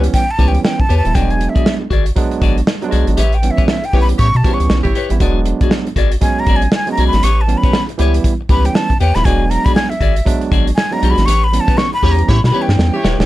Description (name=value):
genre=funk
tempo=119 BPM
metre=4/4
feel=swing 60% on 16ths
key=unclear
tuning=A4 = 441 Hz
part: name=clean electric guitar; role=accompaniment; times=0.0-13.2 s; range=F#4 to D5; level=-23 LUFS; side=left 10 dB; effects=phaser
part: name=barky tine electric piano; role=stabs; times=0.0-13.3 s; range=E3 to E4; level=-20 LUFS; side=right 5 dB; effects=overdrive
part: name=rubbery square bass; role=bass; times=0.0-13.3 s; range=D#1 to B2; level=-14 LUFS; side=equal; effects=none
part: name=warm soul drum kit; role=drums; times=0.0-13.3 s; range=hi-hat, kick drum, snare drum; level=-16 LUFS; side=equal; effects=none
part: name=breathy mellow silver concert flute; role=melody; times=0.1-13.3 s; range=E5 to C#6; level=-19 LUFS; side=equal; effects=none
part: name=warm horn section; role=second line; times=3.9-5.2, 12.0-13.3 s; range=E4 to C#5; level=-23 LUFS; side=right 2 dB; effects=none
room=little or no reverb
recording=dark, warm production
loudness=-12 LUFS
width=side -16 dB against mid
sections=0.0-13.3 A section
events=flute solo 0.0-13.3; band accent 3.2-5.2, 11.3-13.3; drum fill 12.3-13.3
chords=0.0 A9; 1.2 E9; 3.2 A9; 5.2 E9; 7.2 A9; 9.3 E9; 11.3 A9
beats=0.14 0.65 | 1.15 1.66 2.17 2.67 | 3.18 3.69 4.19 4.70 | 5.21 5.71 6.22 6.72 | 7.23 7.74 8.24 8.75 | 9.25 9.76 10.26 10.77 | 11.28 11.78 12.29 12.79